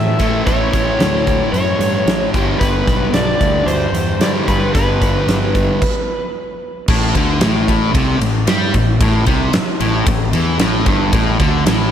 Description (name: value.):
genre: blues rock power trio and southern rock.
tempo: 112 BPM.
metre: 4/4.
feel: straight.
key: A mixolydian.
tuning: A4 = 439 Hz.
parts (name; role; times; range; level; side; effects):
overdriven slide guitar; melody; 0.0-6.3 s; B4 to E5; -20 LUFS; equal; slapback echo, analog delay.
sludgy distorted guitar; riff; 0.0-11.9 s; G2 to A3; -18 LUFS; left 1 dB; overdrive.
fuzz fingered electric bass; bass; 0.0-11.9 s; G1 to A2; -20 LUFS; equal; overdrive.
huge arena drum kit; drums; 0.2-11.8 s; crash cymbal, hi-hat, kick drum, ride cymbal, snare drum; -18 LUFS; equal; none.
room: moderate lush hall reverb, RT60 2.4 s.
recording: big arena sound.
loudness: -13 LUFS.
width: side -9 dB against mid.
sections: 0.0-6.9 A section; 6.9-11.9 B section.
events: stop 5.8-6.9.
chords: 0.0 A; 2.3 G; 6.9 A5.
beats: | 0.47 1.00 1.54 2.07 | 2.61 3.14 3.68 4.21 | 4.74 5.28 5.81 6.35 | 6.88 7.41 7.94 8.48 | 9.01 9.54 10.07 10.60 | 11.13 11.67.